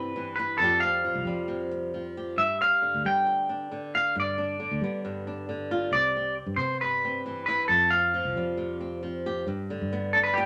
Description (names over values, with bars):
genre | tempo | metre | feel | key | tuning
highlife guitar band | 135 BPM | 4/4 | straight | G mixolydian | A4 = 440 Hz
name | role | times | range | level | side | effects
clean electric guitar | melody | 0.0-10.5 s | G4 to G5 | -26 LUFS | equal | none
flamenco guitar | accompaniment | 0.0-10.5 s | F2 to G4 | -35 LUFS | equal | none
fingered electric bass | bass | 0.0-10.5 s | C2 to G3 | -38 LUFS | equal | none
room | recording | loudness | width
moderate studio reverb, RT60 0.9 s | none | -27 LUFS | mono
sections
0.0-9.5 A section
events
none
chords
0.0 Cmaj7; 0.6 Fsus2; 2.4 G; 5.9 Cmaj7; 7.7 Fsus2; 9.5 G